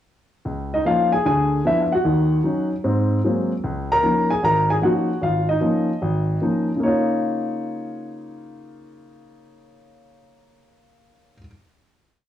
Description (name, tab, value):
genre	solo jazz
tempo	151 BPM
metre	4/4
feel	swing 66% on 8ths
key	Db major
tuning	A4 = 440 Hz
part	warm baby grand piano	solo	0.5-11.4 s	Ab1 to Bb5	-18 LUFS	equal	cassette tape
room	moderate spring reverb, RT60 1.3 s, small room ambience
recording	home recording on cassette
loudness	-18 LUFS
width	side -11 dB against mid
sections	0.5-6.8 A section; 6.8-10.0 final chord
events	none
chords	0.5 Db69; 1.2 Ddim7; 2.0 Ebm7; 2.8 Ab9; 3.6 Db69